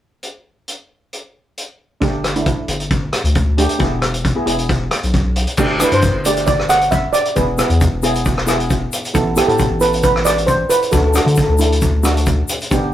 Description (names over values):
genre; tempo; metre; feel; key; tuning
calypso; 135 BPM; 4/4; straight; G major; A4 = 440 Hz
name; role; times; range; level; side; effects
street-band drum kit; drums; 0.2-12.8 s; crash cymbal, hi-hat, kick drum, rim click; -18 LUFS; equal; none
steel pan; accompaniment; 2.0-12.9 s; A3 to A4; -21 LUFS; right 1 dB; none
round analog bass; bass; 2.0-12.9 s; E1 to D3; -19 LUFS; left 1 dB; none
egg shaker; percussion; 5.6-12.8 s; none; -28 LUFS; left 5 dB; none
steel pan; melody; 5.8-11.7 s; G4 to F#5; -16 LUFS; right 1 dB; none
room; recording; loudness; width
moderate studio reverb, RT60 0.5 s; rough rehearsal-room recording; -14 LUFS; side -12 dB against mid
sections
0.2-2.0 A section; 2.0-5.6 B section; 5.6-12.9 C section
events
none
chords
0.2 N.C.; 2.0 Gsus2; 3.8 E; 5.6 Gsus2; 7.4 E; 9.2 Asus2; 10.9 D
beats
| 0.23 0.67 1.12 1.57 | 2.01 2.46 2.91 3.35 | 3.80 4.25 4.69 5.14 | 5.59 6.03 6.48 6.92 | 7.37 7.81 8.26 8.70 | 9.15 9.60 10.04 10.48 | 10.93 11.38 11.82 12.27 | 12.71